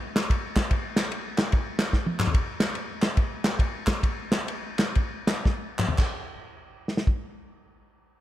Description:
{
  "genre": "gospel",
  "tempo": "110-147 BPM",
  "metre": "4/4",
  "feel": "swing 65% on 8ths",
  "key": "none",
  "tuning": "none",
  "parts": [
    { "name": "warm soul drum kit", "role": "drums", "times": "0.2-7.2 s", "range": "crash cymbal, kick drum, ride cymbal, snare drum, toms", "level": "-25 LUFS", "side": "equal", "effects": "none" },
    { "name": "group handclap", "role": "percussion", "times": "0.2-6.3 s", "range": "none", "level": "-32 LUFS", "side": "equal", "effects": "none" }
  ],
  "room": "light reverb",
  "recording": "none",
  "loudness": "-24 LUFS",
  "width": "side -14 dB against mid",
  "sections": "0.0-2.3 A section; 2.3-6.0 B section; 6.0-8.2 C section",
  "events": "drum fill 1.9-2.3, 5.5-6.0; slowing down 2.3-6.0",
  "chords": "none",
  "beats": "0.30 | 0.71 1.12 1.53 1.94 | 2.35 2.75 3.17 3.60 | 4.03 4.49 4.96 5.46 | 5.98 6.53 7.07"
}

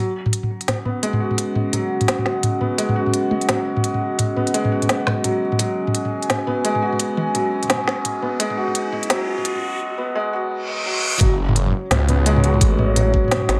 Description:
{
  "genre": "half-time drum and bass",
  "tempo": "171 BPM",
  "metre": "4/4",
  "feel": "swing 59% on 16ths, half-time",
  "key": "unclear",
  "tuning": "A4 = 445 Hz",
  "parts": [
    { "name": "dark analog pad", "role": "sustained chords", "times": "0.0-13.6 s", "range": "C#4 to G#5", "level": "-28 LUFS", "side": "equal", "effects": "chorus, vintage 12-bit sampler grit, sidechain pumping" },
    { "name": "felt-muted upright piano", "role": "arpeggios", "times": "0.0-13.6 s", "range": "F#3 to F#4", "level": "-26 LUFS", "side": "equal", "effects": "low-pass filter, tape echo" },
    { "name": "organic electronic drum kit", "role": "drums", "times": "0.3-13.6 s", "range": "hi-hat, snare drum, toms", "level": "-24 LUFS", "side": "equal", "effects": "small room ambience" },
    { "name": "electronic kick drum", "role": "drums", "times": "1.4-8.5, 11.2-13.2 s", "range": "none", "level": "-20 LUFS", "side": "equal", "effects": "high-pass filter on kick, small room ambience, high-pass filter on room" },
    { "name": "riser and reverse cymbal", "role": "sound effects", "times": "8.0-11.2 s", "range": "none", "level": "-30 LUFS", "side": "equal", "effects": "none" },
    { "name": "phased detuned saw bass", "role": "bass", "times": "11.2-13.6 s", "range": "F#1 to C#2", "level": "-21 LUFS", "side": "equal", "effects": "phaser" }
  ],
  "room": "moderate digital room reverb, RT60 1.1 s, digital ambience",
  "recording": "high-pass filter",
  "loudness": "-20 LUFS",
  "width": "mono",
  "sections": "0.0-11.2 A section; 11.2-13.6 B section",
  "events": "build-up 0.0-11.2; filter sweep 0.0-11.2; riser 8.0-9.8; reverse cymbal 10.6-11.2; drop 11.2-13.6",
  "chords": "0.0 F#5; 11.2 F#m",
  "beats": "0.33 0.68 1.03 | 1.38 1.73 2.08 2.44 | 2.79 3.14 3.49 3.84 | 4.19 4.54 4.89 5.24 | 5.59 5.94 6.29 6.64 | 7.00 7.35 7.70 8.05 | 8.40 8.75 9.10 9.45 | 9.80 10.15 10.51 10.86 | 11.21 11.56 11.91 12.26 | 12.61 12.96 13.31"
}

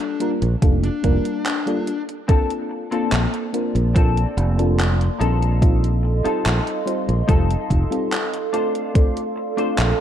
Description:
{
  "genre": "vaporwave",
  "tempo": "72 BPM",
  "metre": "4/4",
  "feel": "straight",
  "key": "Bb major",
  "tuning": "A4 = 440 Hz",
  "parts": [
    { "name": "fuzz lead guitar", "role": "melody", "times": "0.0-2.0 s", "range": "D4", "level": "-27 LUFS", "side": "left 6 dB", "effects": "distortion, tape echo" },
    { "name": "mellow FM electric piano", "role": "accompaniment", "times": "0.0-10.0 s", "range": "G3 to C5", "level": "-24 LUFS", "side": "left 1 dB", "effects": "phaser, wide subtle chorus, analog delay" },
    { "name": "gated 80s digital drum machine", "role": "drums", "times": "0.0-10.0 s", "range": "handclaps, hi-hat", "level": "-27 LUFS", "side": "equal", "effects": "gated reverb, overdrive" },
    { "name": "fingered electric bass", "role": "bass", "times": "0.4-9.9 s", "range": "F1 to Bb1", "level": "-19 LUFS", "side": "equal", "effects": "tube saturation" },
    { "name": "electronic kick drum", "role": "drums", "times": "0.6-9.1 s", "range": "none", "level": "-16 LUFS", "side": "equal", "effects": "overdrive" },
    { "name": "warbly tape-like pad", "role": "sustained chords", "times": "3.3-10.0 s", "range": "Bb3 to C6", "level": "-28 LUFS", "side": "right 4 dB", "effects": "chorus, built-in reverb, phaser, vintage 12-bit sampler grit" },
    { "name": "semi-hollow electric guitar", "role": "riff", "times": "2.3-10.0 s", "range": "C4 to C5", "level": "-30 LUFS", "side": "left 6 dB", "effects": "analog chorus, analog delay" }
  ],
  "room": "light reverb",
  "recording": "dark, warm production",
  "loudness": "-18 LUFS",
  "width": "side -10 dB against mid",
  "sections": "0.0-10.0 A section",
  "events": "none",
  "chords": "0.0 Gm7; 2.3 Bbmaj9; 5.2 F7/Bb; 8.5 Dm7",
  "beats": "0.62 1.46 | 2.29 3.12 3.96 4.79 | 5.62 6.46 7.29 8.12 | 8.96 9.79"
}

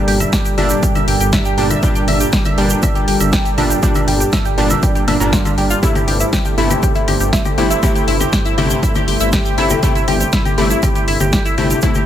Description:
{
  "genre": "melodic techno",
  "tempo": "120 BPM",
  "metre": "4/4",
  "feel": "straight",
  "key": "G dorian",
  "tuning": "A4 = 441 Hz",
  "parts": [
    { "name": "lush unison pad", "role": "sustained chords", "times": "0.0-12.1 s", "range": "G3 to C5", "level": "-24 LUFS", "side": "equal", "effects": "chorus, sidechain pumping" },
    { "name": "tight sequenced synth", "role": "arpeggios", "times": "0.0-12.1 s", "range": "E4 to E5", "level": "-21 LUFS", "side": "equal", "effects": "chorus, phaser, sidechain pumping, tape echo" },
    { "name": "synth brass stab", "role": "stabs", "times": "0.0-12.1 s", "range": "Bb2 to E4", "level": "-20 LUFS", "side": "left 1 dB", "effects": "chorus, sidechain pumping, tape echo" },
    { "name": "analog drone", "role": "drone", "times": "0.1-12.1 s", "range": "G2 to G3", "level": "-28 LUFS", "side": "right 1 dB", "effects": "none" },
    { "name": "swelling detuned saw bass", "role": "bass", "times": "0.1-11.7 s", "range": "G1", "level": "-20 LUFS", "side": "equal", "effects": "sidechain pumping" },
    { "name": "house drum kit", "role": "drums", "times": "0.1-12.1 s", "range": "claves, congas, hi-hat, snare drum", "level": "-21 LUFS", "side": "left 2 dB", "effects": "none" },
    { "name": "egg shaker", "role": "percussion", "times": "0.2-12.0 s", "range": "none", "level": "-27 LUFS", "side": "right 3 dB", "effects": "none" },
    { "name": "electronic kick drum", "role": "drums", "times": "0.3-11.9 s", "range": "none", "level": "-18 LUFS", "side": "equal", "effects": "none" }
  ],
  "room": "light reverb, digital ambience",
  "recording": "none",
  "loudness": "-12 LUFS",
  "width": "side -10 dB against mid",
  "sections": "0.0-12.1 A section",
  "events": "none",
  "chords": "0.0 Gm; 5.8 Am/G",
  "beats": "0.33 0.83 1.33 | 1.83 2.33 2.83 3.33 | 3.83 4.33 4.83 5.33 | 5.83 6.33 6.83 7.33 | 7.83 8.33 8.83 9.33 | 9.83 10.33 10.83 11.33 | 11.83"
}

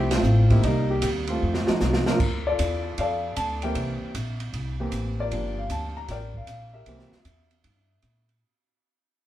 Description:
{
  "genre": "jazz piano trio",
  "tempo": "154 BPM",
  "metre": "4/4",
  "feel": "swing 66% on 8ths",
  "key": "unclear",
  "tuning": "A4 = 435 Hz",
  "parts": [
    { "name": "warm concert grand piano", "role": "melody", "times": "0.0-8.3 s", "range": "Eb3 to Bb5", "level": "-27 LUFS", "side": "equal", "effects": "none" },
    { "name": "upright bass", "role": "bass", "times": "0.0-8.4 s", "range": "G1 to Bb2", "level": "-26 LUFS", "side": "equal", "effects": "none" },
    { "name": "open jazz drum kit", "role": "drums", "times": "0.1-8.3 s", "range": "crash cymbal, hi-hat, kick drum, ride cymbal, snare drum", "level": "-29 LUFS", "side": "right 1 dB", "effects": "none" }
  ],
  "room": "moderate small room reverb, RT60 0.5 s",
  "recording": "band playing live in one room",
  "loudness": "-22 LUFS",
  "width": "side -13 dB against mid",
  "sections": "0.0-2.2 A section; 2.2-8.4 B section",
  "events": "band accent 0.0; drum fill 1.4-2.2; fade-out 2.2-8.4",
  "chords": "0.0 Fmaj9; 0.6 Cm7; 1.4 F7b9; 2.2 Bbmaj7; 3.7 C7; 5.3 Gm7; 6.9 C7",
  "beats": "0.24 | 0.63 1.02 1.41 1.80 | 2.19 2.58 2.96 3.35 | 3.74 4.13 4.52 4.91 | 5.30 5.69 6.08 6.47 | 6.86 7.25 7.64 8.03"
}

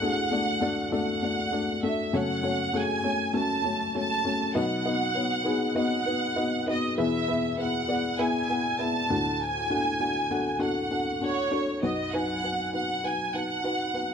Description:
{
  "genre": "pop",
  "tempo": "99 BPM",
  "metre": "4/4",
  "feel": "swing 56% on 16ths",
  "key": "unclear",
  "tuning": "A4 = 440 Hz",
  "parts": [
    { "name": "clear studio violin section", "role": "melody", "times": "0.0-14.1 s", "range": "C#5 to A5", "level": "-28 LUFS", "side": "right 2 dB", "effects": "none" },
    { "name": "felt-muted upright piano", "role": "accompaniment", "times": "0.0-14.1 s", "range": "B1 to A5", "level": "-27 LUFS", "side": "left 2 dB", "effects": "none" }
  ],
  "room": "light reverb",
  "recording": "dry, close 1970s-style studio recording",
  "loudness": "-25 LUFS",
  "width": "side -7 dB against mid",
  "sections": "0.0-11.8 A section; 11.8-14.1 B section",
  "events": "none",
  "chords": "0.0 D; 2.1 F#m; 4.6 B; 7.0 E; 9.1 D; 11.8 B",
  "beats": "0.33 0.93 1.54 | 2.14 2.75 3.35 3.96 | 4.56 5.16 5.77 6.37 | 6.98 7.58 8.19 8.79 | 9.40 10.00 10.61 11.21 | 11.82 12.43 13.03 13.64"
}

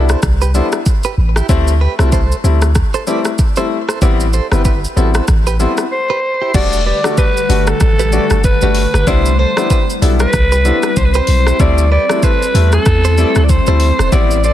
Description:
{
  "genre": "afrobeats",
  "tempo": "95 BPM",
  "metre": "4/4",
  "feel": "swing 58% on 16ths",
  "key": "D mixolydian",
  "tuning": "A4 = 440 Hz",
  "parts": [
    { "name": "clear baby grand piano", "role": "accompaniment", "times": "0.0-14.3 s", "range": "G3 to F#4", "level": "-19 LUFS", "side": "left 5 dB", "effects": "none" },
    { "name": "direct-recorded clean electric guitar", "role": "riff", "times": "0.0-14.5 s", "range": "E4 to D5", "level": "-23 LUFS", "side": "right 7 dB", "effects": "tremolo, ping-pong delay" },
    { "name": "punchy sub bass", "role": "bass", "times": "0.0-14.5 s", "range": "E1 to E2", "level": "-13 LUFS", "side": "equal", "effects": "none" },
    { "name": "afro-pop drum kit", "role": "drums", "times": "0.1-14.5 s", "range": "crash cymbal, hi-hat, kick drum, rim click, shaker", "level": "-16 LUFS", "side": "equal", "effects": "soft clipping on snare" },
    { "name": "growling alto saxophone", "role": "melody", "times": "5.9-14.5 s", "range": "A4 to D5", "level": "-16 LUFS", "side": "equal", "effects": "none" },
    { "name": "glassy FM pad", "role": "sustained chords", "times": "6.8-14.5 s", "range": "D3 to F#5", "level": "-22 LUFS", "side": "left 2 dB", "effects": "ensemble chorus, built-in reverb" }
  ],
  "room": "digital ambience",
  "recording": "dense, heavily limited modern master",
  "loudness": "-11 LUFS",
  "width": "side -12 dB against mid",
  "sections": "0.0-6.5 A section; 6.5-14.5 B section",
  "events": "break 5.9-6.5",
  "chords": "0.0 Cmaj7; 1.5 D9sus4; 4.0 Am9; 6.5 Em11; 9.1 Cmaj7; 11.6 D9sus4",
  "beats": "0.23 0.86 | 1.49 2.12 2.75 3.39 | 4.02 4.65 5.28 5.91 | 6.54 7.18 7.81 8.44 | 9.07 9.70 10.33 10.97 | 11.60 12.23 12.86 13.49 | 14.12"
}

